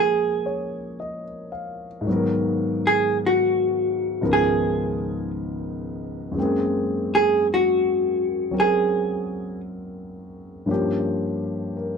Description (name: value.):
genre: jazz ballad.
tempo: 56 BPM.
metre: 4/4.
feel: swing 67% on 8ths.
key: unclear.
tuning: A4 = 441 Hz.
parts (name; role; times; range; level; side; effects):
vintage hollow-body jazz guitar; melody; 0.0-9.6 s; Gb4 to Ab4; -20 LUFS; right 1 dB; none.
warm grand piano; accompaniment; 0.0-12.0 s; Db2 to F5; -25 LUFS; left 1 dB; none.
room: wet studio reverb, RT60 0.6 s.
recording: dark, warm production.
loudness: -20 LUFS.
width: side -5 dB against mid.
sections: 0.0-12.0 A section.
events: hollow-body jazz guitar solo 0.0-12.0.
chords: 0.0 Bbm9; 2.1 Abm9; 4.2 Db13; 6.4 Gbadd9; 10.7 Gm7b5.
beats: 0.98 | 2.06 3.14 4.22 5.29 | 6.37 7.45 8.53 9.61 | 10.69 11.77.